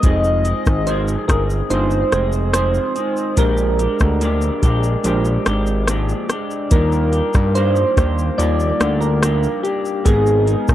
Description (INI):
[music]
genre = indie pop, bedroom pop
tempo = 72 BPM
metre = 4/4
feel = straight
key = Eb major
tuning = A4 = 440 Hz
[part]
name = soft electric-piano-like synth keys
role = melody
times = 0.0-10.7 s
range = G4 to Eb5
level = -21 LUFS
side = right 1 dB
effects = analog chorus, tape echo
[part]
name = electric guitar through a small old amp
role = accompaniment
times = 0.0-10.7 s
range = F2 to Bb4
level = -24 LUFS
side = left 3 dB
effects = analog chorus, vibrato effect
[part]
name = tine electric piano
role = accompaniment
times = 0.0-10.7 s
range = G3 to D5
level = -26 LUFS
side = right 3 dB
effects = medium stereo tremolo, cassette tape
[part]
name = fat analog bass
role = bass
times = 0.0-10.7 s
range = F1 to G2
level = -18 LUFS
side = equal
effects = none
[part]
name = soft vintage rhythm box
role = drums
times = 0.0-10.7 s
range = hi-hat, kick drum, rim click, shaker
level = -17 LUFS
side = equal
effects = overdrive
[sound]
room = little or no reverb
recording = dry, close 1970s-style studio recording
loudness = -15 LUFS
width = side -12 dB against mid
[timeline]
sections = 0.0-10.7 A section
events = none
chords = 0.0 Fm7; 3.4 Bb13; 6.7 Ebmaj9; 10.1 Abmadd9